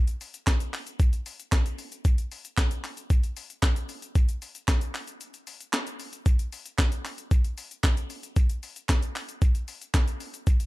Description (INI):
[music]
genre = pop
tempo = 114 BPM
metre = 4/4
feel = straight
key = none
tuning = none
[part]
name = breakbeat sampler-style drum kit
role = drums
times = 0.1-10.7 s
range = handclaps, hi-hat, kick drum, shaker, snare drum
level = -24 LUFS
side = equal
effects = none
[part]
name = group handclap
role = percussion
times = 0.5-10.1 s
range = none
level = -39 LUFS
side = right 4 dB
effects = none
[sound]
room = little or no reverb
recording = dark, warm production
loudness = -25 LUFS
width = side -20 dB against mid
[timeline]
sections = 0.0-10.7 A section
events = break 5.2-6.3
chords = none